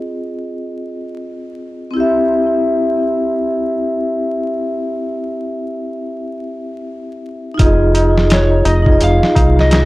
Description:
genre	trip hop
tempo	85 BPM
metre	4/4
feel	swing 60% on 16ths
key	unclear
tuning	A4 = 441 Hz
part	vibraphone with medium mallets	accompaniment	0.0-9.9 s	C4 to E5	-17 LUFS	equal	harmonic tremolo, tape echo
part	deep dub fingered electric bass	bass	7.6-9.9 s	F1 to C2	-14 LUFS	equal	none
part	boom bap sampler-style drum kit	drums	7.6-9.9 s	hi-hat, kick drum, snare drum	-14 LUFS	equal	none
part	tabla	percussion	7.6-9.9 s	none	-25 LUFS	left 1 dB	none
part	electric slide guitar	melody	8.3-9.9 s	Db5 to F5	-18 LUFS	equal	none
room	little or no reverb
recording	dry, gritty hardware recording, vinyl crackle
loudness	-13 LUFS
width	side -19 dB against mid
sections	0.0-7.6 A section; 7.6-9.9 B section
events	none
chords	0.0 Fm7; 1.9 C; 7.6 Fm7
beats	0.53 1.24 | 1.95 2.65 3.36 4.06 | 4.77 5.47 6.18 6.89 | 7.59 8.30 9.00 9.71

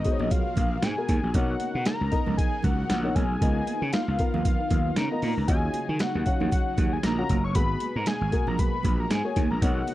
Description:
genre	early-eighties boogie funk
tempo	116 BPM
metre	4/4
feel	swing 56% on 16ths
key	unclear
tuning	A4 = 440 Hz
part	fat analog lead	melody	0.0-9.9 s	Eb5 to Db6	-31 LUFS	left 2 dB	chorus
part	string machine, violins	sustained chords	0.0-9.9 s	Cb3 to Bb4	-36 LUFS	equal	ensemble chorus
part	gritty slap bass	bass	0.0-9.8 s	Gb1 to Eb3	-27 LUFS	equal	overdrive
part	boom bap sampler-style drum kit	drums	0.0-9.9 s	hi-hat, kick drum, snare drum	-26 LUFS	equal	none
part	warm grand piano	accompaniment	0.1-9.9 s	Ab3 to Gb5	-32 LUFS	left 3 dB	none
part	congas	percussion	0.2-9.9 s	none	-35 LUFS	right 7 dB	none
room	little or no reverb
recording	dry, close 1970s-style studio recording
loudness	-23 LUFS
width	side -15 dB against mid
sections	0.0-9.9 A section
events	none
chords	0.0 Abm9; 1.3 Bmaj9; 3.4 Db13; 5.5 Ebm9; 7.6 Abm9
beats	0.31 0.83 | 1.34 1.86 2.38 2.90 | 3.41 3.93 4.45 4.97 | 5.48 6.00 6.52 7.04 | 7.55 8.07 8.59 9.10 | 9.62

